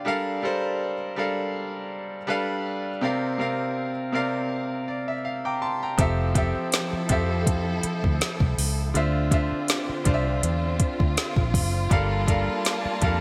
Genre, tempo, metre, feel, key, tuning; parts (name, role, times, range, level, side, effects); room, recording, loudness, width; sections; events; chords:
contemporary R&B; 81 BPM; 4/4; swing 54% on 16ths; F major; A4 = 437 Hz
bright baby grand piano; accompaniment; 0.0-13.2 s; C3 to D6; -29 LUFS; equal
warm studio string section; sustained chords; 6.0-13.2 s; D3 to A5; -33 LUFS; equal
vintage muted fingered electric bass; bass; 6.0-13.2 s; F1 to F2; -28 LUFS; equal
smooth R&B drum kit; drums; 6.0-13.2 s; hi-hat, kick drum, snare drum; -26 LUFS; equal; gated reverb
light reverb, small room reverb; bright 1980s-style digital production; -25 LUFS; mono
0.0-13.2 A section
grand piano fill 4.5-6.0
0.1 Gm9; 2.3 G9; 3.0 C7sus4; 6.0 Fmaj7; 8.9 Dm7; 11.9 Gm9